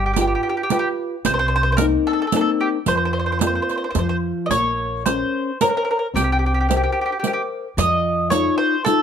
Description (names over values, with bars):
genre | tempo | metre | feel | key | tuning
italian folk, Italian serenade | 111 BPM | 3/4 | straight | unclear | A4 = 438 Hz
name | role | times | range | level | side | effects
mandolin | melody | 0.0-9.0 s | G4 to Eb5 | -21 LUFS | right 1 dB | plate reverb
nylon-string guitar | accompaniment | 0.0-9.0 s | C3 to E5 | -23 LUFS | left 3 dB | none
upright bass | bass | 0.0-8.5 s | G1 to F2 | -24 LUFS | equal | none
riq | percussion | 0.2-9.0 s | none | -24 LUFS | right 7 dB | none
room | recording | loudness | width
moderate small room reverb, RT60 0.6 s | none | -18 LUFS | side -8 dB against mid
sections
0.0-9.0 A section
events
none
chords
0.0 G7; 1.2 Cm7; 2.9 Fsus4; 4.0 F5; 4.5 Bbmadd9; 6.2 C7; 7.8 F7